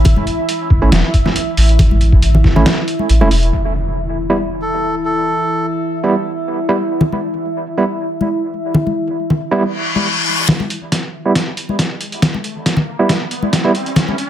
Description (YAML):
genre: deep dubstep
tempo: 138 BPM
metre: 4/4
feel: swing 54% on 16ths, half-time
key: unclear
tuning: A4 = 440 Hz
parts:
  - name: deep dark ambient pad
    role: sustained chords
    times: 0.0-14.3 s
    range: E4 to E5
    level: -22 LUFS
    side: equal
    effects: chorus, built-in reverb
  - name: soft dub sub bass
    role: bass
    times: 0.0-3.5 s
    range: E1 to A1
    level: -12 LUFS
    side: equal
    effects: none
  - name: congas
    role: percussion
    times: 0.0-3.3, 7.0-14.2 s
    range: none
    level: -19 LUFS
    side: left 2 dB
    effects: dub echo
  - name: electronic kick drum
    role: drums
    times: 0.1-2.5, 10.5-14.1 s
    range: none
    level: -14 LUFS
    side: equal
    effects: high-pass filter on kick, small room ambience
  - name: trip hop sampler-style drum kit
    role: drums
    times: 0.1-3.5, 10.5-14.3 s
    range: hi-hat, snare drum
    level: -18 LUFS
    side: equal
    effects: small room ambience
  - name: overdriven tine electric piano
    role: stabs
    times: 0.8-13.7 s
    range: G3 to E4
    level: -19 LUFS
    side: right 3 dB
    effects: fast tremolo, low-pass filter, dub echo
  - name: impact, reverse cymbal and riser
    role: sound effects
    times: 3.5-5.3, 9.7-14.3 s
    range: none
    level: -22 LUFS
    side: left 1 dB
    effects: none
  - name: melodica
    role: melody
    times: 4.6-5.7 s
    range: A4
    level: -21 LUFS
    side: equal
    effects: dub echo
room: light reverb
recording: none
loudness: -13 LUFS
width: side -11 dB against mid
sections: 0.0-3.5 A section; 3.5-10.5 B section; 10.5-14.3 C section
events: kick drops out 3.1-3.5; impact 3.5-5.3; reverse cymbal 9.7-10.5; build-up 10.5-14.3; drum fill 10.5-14.3; riser 10.5-14.3; filter sweep on tine electric piano 10.5-14.3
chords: 0.0 A5; 3.5 N.C.